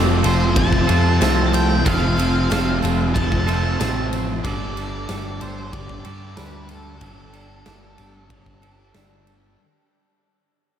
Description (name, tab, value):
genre	rock, shoegaze and dream pop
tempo	93 BPM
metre	4/4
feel	straight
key	unclear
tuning	A4 = 436 Hz
part	picked twelve-string acoustic guitar	arpeggios	0.0-9.6 s	A3 to G4	-33 LUFS	left 1 dB	none
part	crunchy overdriven guitar	riff	0.0-9.6 s	F2 to G3	-28 LUFS	equal	none
part	electric guitar at the edge of break-up	riff	0.0-9.6 s	F3 to A4	-25 LUFS	right 7 dB	reverse reverb
part	thick fuzz guitar	riff	0.0-9.6 s	F2 to G3	-26 LUFS	left 8 dB	distortion, wide subtle chorus
part	growling picked electric bass	bass	0.0-9.6 s	F1 to G2	-23 LUFS	equal	overdrive
part	huge arena drum kit	drums	0.2-9.4 s	kick drum, ride cymbal, snare drum	-25 LUFS	equal	none
part	octave-fuzz lead guitar	melody	0.3-8.9 s	A4 to A5	-28 LUFS	equal	distortion, ping-pong delay
part	tambourine	percussion	0.3-9.5 s	none	-41 LUFS	right 4 dB	none
room	moderate huge ambient reverb, RT60 4.5 s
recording	dreamy mix soaked in reverb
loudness	-17 LUFS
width	side -9 dB against mid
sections	0.0-9.6 A section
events	fade-out 0.0-9.6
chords	0.0 F; 4.4 Gsus2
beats	0.56 1.21 | 1.85 2.50 3.15 3.79 | 4.44 5.08 5.73 6.37 | 7.02 7.66 8.30 8.95